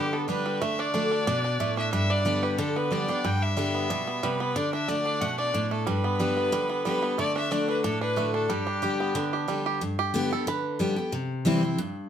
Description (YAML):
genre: bluegrass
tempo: 183 BPM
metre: 4/4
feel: straight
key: G major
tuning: A4 = 440 Hz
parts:
  - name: bluegrass banjo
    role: melody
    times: 0.0-10.9 s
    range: D3 to B4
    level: -30 LUFS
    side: right 7 dB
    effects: none
  - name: clear fiddle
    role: melody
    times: 0.0-9.5 s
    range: G4 to G5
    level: -29 LUFS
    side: left 2 dB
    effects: none
  - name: picked steel-string acoustic guitar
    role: accompaniment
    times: 0.0-12.1 s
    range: G2 to G4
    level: -27 LUFS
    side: left 1 dB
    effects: none
room: moderate studio reverb, RT60 0.7 s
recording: none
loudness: -24 LUFS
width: side -9 dB against mid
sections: 0.0-9.8 A section; 9.8-12.1 B section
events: five-string banjo solo 9.8-12.1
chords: 0.0 G; 0.6 D; 1.9 G; 4.6 D; 5.9 G; 7.2 D; 8.5 G; 11.1 C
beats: 0.28 | 0.61 0.94 1.27 1.60 | 1.93 2.25 2.58 2.91 | 3.24 3.57 3.90 4.23 | 4.55 4.88 5.21 5.54 | 5.87 6.20 6.53 6.85 | 7.18 7.51 7.84 8.17 | 8.50 8.83 9.16 9.48 | 9.81 10.14 10.47 10.80 | 11.13 11.46 11.79